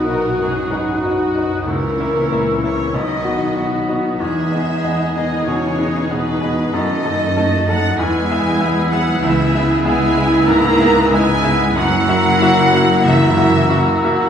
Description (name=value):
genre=classical, romantic movement for piano and orchestra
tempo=94 BPM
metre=4/4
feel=rubato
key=unclear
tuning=A4 = 440 Hz
part: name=clear baby grand piano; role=melody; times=0.0-14.3 s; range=B1 to E5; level=-19 LUFS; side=left 2 dB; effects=none
part: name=warm symphonic violin section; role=melody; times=0.0-14.3 s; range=E4 to A4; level=-32 LUFS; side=left 3 dB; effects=none
part: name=clear oboe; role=second line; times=0.0-14.3 s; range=G#5 to D#6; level=-27 LUFS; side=right 2 dB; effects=none
part: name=mellow hollow concert flute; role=second line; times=0.0-14.3 s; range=D#6 to F#6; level=-27 LUFS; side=right 1 dB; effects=none
part: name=rich symphonic violin section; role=second line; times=0.0-14.0 s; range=F#4 to A#5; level=-22 LUFS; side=left 1 dB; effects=none
part: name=warm symphonic viola section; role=accompaniment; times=0.0-14.3 s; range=A3 to F#4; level=-22 LUFS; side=right 1 dB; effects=none
part: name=warm French horn section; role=sustained chords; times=0.0-14.3 s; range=E3 to E4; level=-23 LUFS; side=left 2 dB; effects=none
part: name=warm symphonic double bass section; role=bass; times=0.0-14.3 s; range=F#1 to F#2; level=-22 LUFS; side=right 1 dB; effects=none
part: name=warm symphonic cello section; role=bass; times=0.1-14.0 s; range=F#2 to A#3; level=-24 LUFS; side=right 2 dB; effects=none
room=wet recital hall reverb, RT60 1.7 s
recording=recorded in a church or concert hall, small room ambience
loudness=-14 LUFS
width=side -8 dB against mid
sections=0.0-14.3 A section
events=none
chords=0.0 B; 1.7 A#dim/C#; 2.9 B; 4.2 Emaj7; 6.7 D#dim/F#; 8.0 E; 9.2 C#m7; 11.8 F#7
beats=0.39 1.03 | 1.67 2.31 2.95 3.57 | 4.19 4.83 5.47 6.10 | 6.74 7.37 7.98 8.60 | 9.23 9.85 10.47 11.12 | 11.77 12.42 13.06 13.71